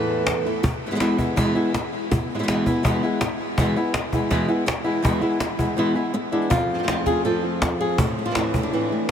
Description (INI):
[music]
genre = flamenco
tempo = 163 BPM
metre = 4/4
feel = straight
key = E phrygian dominant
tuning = A4 = 440 Hz
[part]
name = flamenco guitar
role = melody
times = 0.0-9.1 s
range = E2 to B4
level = -22 LUFS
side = equal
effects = ping-pong delay
[part]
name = flamenco guitar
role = stabs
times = 0.0-0.6, 6.5-9.1 s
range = E2 to F4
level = -28 LUFS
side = right 3 dB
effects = wide subtle chorus, ping-pong delay
[part]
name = cajon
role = percussion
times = 0.3-9.1 s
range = none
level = -25 LUFS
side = equal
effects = none
[sound]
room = moderate huge ambient reverb, RT60 7.1 s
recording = dreamy mix soaked in reverb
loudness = -20 LUFS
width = side -8 dB against mid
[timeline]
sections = 0.6-6.5 A section; 6.5-9.1 B section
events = none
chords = 0.0 Esus4; 0.6 E; 6.5 F; 8.0 Am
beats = 0.27 | 0.64 1.01 1.37 1.74 | 2.11 2.47 2.84 3.21 | 3.58 3.94 4.31 4.68 | 5.05 5.41 5.78 6.15 | 6.52 6.88 7.25 7.62 | 7.99 8.35 8.72 9.09